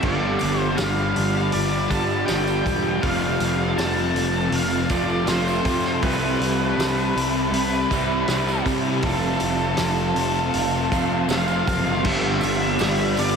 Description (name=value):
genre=rock, shoegaze and dream pop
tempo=80 BPM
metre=4/4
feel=straight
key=G mixolydian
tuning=A4 = 444 Hz
part: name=octave-fuzz lead guitar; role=melody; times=0.0-13.4 s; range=A4 to A5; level=-26 LUFS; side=equal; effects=distortion, tape echo
part: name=glassy FM pad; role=sustained chords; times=0.0-13.4 s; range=C4 to C6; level=-29 LUFS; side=equal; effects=ensemble chorus, built-in reverb
part: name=crunchy overdriven guitar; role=riff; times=0.0-12.0 s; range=F2 to C4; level=-31 LUFS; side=right 1 dB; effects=none
part: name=electric guitar through a small old amp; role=riff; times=0.0-13.4 s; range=F2 to G4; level=-27 LUFS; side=right 6 dB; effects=reverse reverb
part: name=thick fuzz guitar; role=riff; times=0.0-13.4 s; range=F2 to C4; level=-26 LUFS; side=left 7 dB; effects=distortion, lush chorus
part: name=fuzz picked electric bass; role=bass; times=0.0-13.4 s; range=E1 to C3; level=-26 LUFS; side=equal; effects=overdrive
part: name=loose indie drum kit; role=drums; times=0.0-13.4 s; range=crash cymbal, hi-hat, kick drum, snare drum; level=-29 LUFS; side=equal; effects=none
part: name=tambourine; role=percussion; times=0.0-13.4 s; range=none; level=-42 LUFS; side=right 10 dB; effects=none
room=wet huge ambient reverb, RT60 8.3 s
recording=dreamy mix soaked in reverb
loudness=-19 LUFS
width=side -6 dB against mid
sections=0.0-12.1 A section; 12.1-13.4 B section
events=none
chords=0.0 G7; 3.0 F; 6.0 C; 9.0 F; 12.1 G7